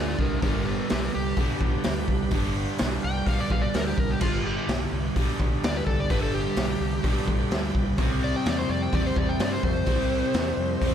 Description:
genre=blues rock power trio and southern rock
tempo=127 BPM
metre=4/4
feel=straight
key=G mixolydian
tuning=A4 = 440 Hz
part: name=overdriven slide guitar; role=melody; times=0.0-10.9 s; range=B3 to G5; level=-31 LUFS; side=left 2 dB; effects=none
part: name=bright tonewheel organ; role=sustained chords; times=0.0-10.9 s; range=G3 to C#5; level=-39 LUFS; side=right 4 dB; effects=none
part: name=crunchy overdriven guitar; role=riff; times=0.0-10.9 s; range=G2 to C4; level=-28 LUFS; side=right 2 dB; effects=none
part: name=growling fingered electric bass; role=bass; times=0.0-10.9 s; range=G1 to G2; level=-30 LUFS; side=equal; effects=overdrive
part: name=raw garage drum kit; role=drums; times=0.2-10.9 s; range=crash cymbal, hi-hat, kick drum, snare drum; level=-27 LUFS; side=equal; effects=none
room=light reverb, small room ambience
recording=none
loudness=-23 LUFS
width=side -9 dB against mid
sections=0.0-10.9 A section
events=electric slide guitar solo 0.0-10.9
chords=0.0 G; 8.0 C

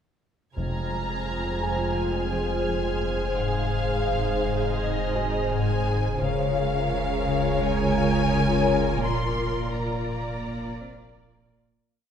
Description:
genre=cinematic, suspense film score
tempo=85 BPM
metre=4/4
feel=straight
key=F minor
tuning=A4 = 440 Hz
part: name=muted symphonic violin section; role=melody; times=0.6-11.2 s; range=Eb5 to C6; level=-32 LUFS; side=left 3 dB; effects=none
part: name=muted symphonic violin section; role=second line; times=0.6-11.6 s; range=Ab4 to D5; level=-34 LUFS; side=equal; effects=none
part: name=muted symphonic viola section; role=accompaniment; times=0.6-11.6 s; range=Ab3 to F4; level=-31 LUFS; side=right 1 dB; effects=none
part: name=ethereal airy pad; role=sustained chords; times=1.0-11.9 s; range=Ab4 to Ab5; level=-32 LUFS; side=equal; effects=ensemble chorus, built-in reverb
part: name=concert harp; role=riff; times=0.6-11.9 s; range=F2 to Db4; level=-30 LUFS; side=left 6 dB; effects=none
part: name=muted symphonic cello section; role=bass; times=0.6-11.6 s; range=F2 to Db3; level=-33 LUFS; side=right 4 dB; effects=none
part: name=muted symphonic double bass section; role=bass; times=0.6-11.6 s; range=F1 to Db2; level=-34 LUFS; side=right 4 dB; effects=none
part: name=punchy sub bass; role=drone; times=0.6-11.8 s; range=F1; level=-33 LUFS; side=equal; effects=none
part: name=timpani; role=percussion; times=0.6-1.6 s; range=F2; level=-35 LUFS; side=right 1 dB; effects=none
part: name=muted studio violin section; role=texture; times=0.6-5.8 s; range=F6 to Ab6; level=-38 LUFS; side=right 2 dB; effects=none
part: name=music box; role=texture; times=1.6-11.8 s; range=C4 to Ab5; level=-37 LUFS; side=right 4 dB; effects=none
room=wet scoring stage reverb, RT60 1.5 s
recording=minimal, uncompressed stereo recording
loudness=-23 LUFS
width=side -8 dB against mid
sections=0.6-11.9 A section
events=fade-out 9.0-11.9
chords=0.6 Fm; 3.4 Ab; 6.2 Db6/F; 9.0 Bb/F

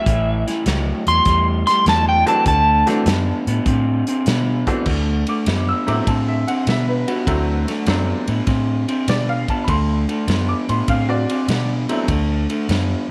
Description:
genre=electric blues shuffle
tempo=100 BPM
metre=4/4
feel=swing 68% on 8ths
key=D mixolydian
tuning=A4 = 440 Hz
part: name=electric slide guitar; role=melody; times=0.0-2.9 s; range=E5 to C6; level=-19 LUFS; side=equal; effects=none
part: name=electric guitar through a small old amp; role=riff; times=0.0-13.1 s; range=A2 to C4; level=-24 LUFS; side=equal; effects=none
part: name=vintage muted fingered electric bass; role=bass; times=0.1-12.9 s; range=A1 to B2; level=-23 LUFS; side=equal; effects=none
part: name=natural country drum kit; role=drums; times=0.1-12.9 s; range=crash cymbal, hi-hat, kick drum, ride cymbal, snare drum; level=-26 LUFS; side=equal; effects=none
part: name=bright upright piano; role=accompaniment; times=2.3-12.1 s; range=E3 to E6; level=-27 LUFS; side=equal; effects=none
room=moderate echo chamber reverb, RT60 2.5 s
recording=none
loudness=-19 LUFS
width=mono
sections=0.0-4.9 A section; 4.9-13.1 A section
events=electric slide guitar solo 0.0-4.9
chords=0.0 A7(no3); 2.5 D7

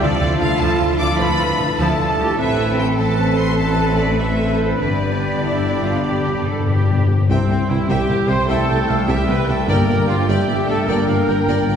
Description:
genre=cinematic, heroic adventure film score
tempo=100 BPM (dotted quarters)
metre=12/8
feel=straight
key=C major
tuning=A4 = 440 Hz
part: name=rich symphonic violin section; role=melody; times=0.0-11.8 s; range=C5 to D6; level=-28 LUFS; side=left 3 dB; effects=none
part: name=clear oboe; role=second line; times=0.0-11.8 s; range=D5 to B5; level=-29 LUFS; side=equal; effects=none
part: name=dark clarinet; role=second line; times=0.0-11.8 s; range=C4 to E4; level=-29 LUFS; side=left 2 dB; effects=none
part: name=hollow concert flute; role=second line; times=0.0-11.8 s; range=C5 to D6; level=-30 LUFS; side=left 1 dB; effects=none
part: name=rich symphonic violin section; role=second line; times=0.0-11.8 s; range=C4 to G5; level=-29 LUFS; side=left 2 dB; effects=none
part: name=clear symphonic viola section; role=accompaniment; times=0.0-11.8 s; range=F3 to E5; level=-25 LUFS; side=right 2 dB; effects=none
part: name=clear trombone section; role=sustained chords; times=0.0-11.8 s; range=F2 to E4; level=-29 LUFS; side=right 2 dB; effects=none
part: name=warm French horn section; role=sustained chords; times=0.0-11.8 s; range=C3 to D4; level=-26 LUFS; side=left 2 dB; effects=none
part: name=concert harp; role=arpeggios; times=0.0-11.8 s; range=G2 to D6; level=-27 LUFS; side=left 3 dB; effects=none
part: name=bright trumpet section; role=stabs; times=0.0-11.8 s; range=C4 to C5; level=-26 LUFS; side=right 2 dB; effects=none
part: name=rich studio double bass section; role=bass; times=0.0-11.8 s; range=G1 to D2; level=-23 LUFS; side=right 1 dB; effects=none
part: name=rich symphonic cello section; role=bass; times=0.0-11.8 s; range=G2 to B4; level=-25 LUFS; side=right 3 dB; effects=none
part: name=timpani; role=percussion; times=4.8-10.2 s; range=G2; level=-21 LUFS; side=left 3 dB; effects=none
part: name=mellow tuba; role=bass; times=7.3-11.7 s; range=G1 to C2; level=-24 LUFS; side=right 1 dB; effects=none
room=wet concert hall reverb, RT60 1.8 s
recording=heard from further back in the room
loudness=-15 LUFS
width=side -7 dB against mid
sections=0.0-7.3 A section; 7.3-11.8 A section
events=timpani fill 4.8-7.3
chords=0.0 Dmadd9; 2.4 Amadd9; 4.8 G; 7.3 C; 9.7 Gm

